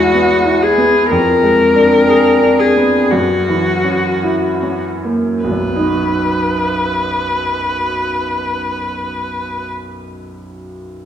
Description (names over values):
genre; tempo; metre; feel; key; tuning
classical, romantic duo for viola and grand piano; 47-66 BPM; 4/4; rubato; B major; A4 = 439 Hz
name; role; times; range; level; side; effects
warm viola; melody; 0.0-9.7 s; F#4 to B4; -14 LUFS; left 2 dB; none
bright grand piano; accompaniment; 0.0-11.1 s; B1 to Ab4; -16 LUFS; right 1 dB; none
room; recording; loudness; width
wet recital hall reverb, RT60 1.8 s; heard from further back in the room; -12 LUFS; side -9 dB against mid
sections
0.0-5.5 A section; 5.5-10.0 B section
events
slowing down 0.0-5.5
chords
0.0 E; 1.1 Fdim7; 3.1 F#7; 5.5 B